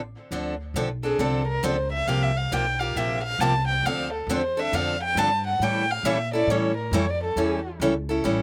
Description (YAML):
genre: acoustic string swing (jazz manouche)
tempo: 136 BPM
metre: 4/4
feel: swing 64% on 8ths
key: D minor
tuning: A4 = 443 Hz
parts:
  - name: upright bass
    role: bass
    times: 0.0-8.4 s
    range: A1 to Bb2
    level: -31 LUFS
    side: equal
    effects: none
  - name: picked steel-string acoustic guitar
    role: accompaniment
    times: 0.3-8.4 s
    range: C3 to A4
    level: -28 LUFS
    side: equal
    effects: none
  - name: warm violin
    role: second line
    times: 1.0-7.6 s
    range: G#4 to A5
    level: -28 LUFS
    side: equal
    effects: none
room: little or no reverb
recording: recorded outdoors, with no room sound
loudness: -25 LUFS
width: mono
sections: 0.3-8.4 A section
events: violin solo 0.3-8.4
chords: 0.3 Dm7; 2.1 C7sus4; 3.8 Dm7; 5.6 A7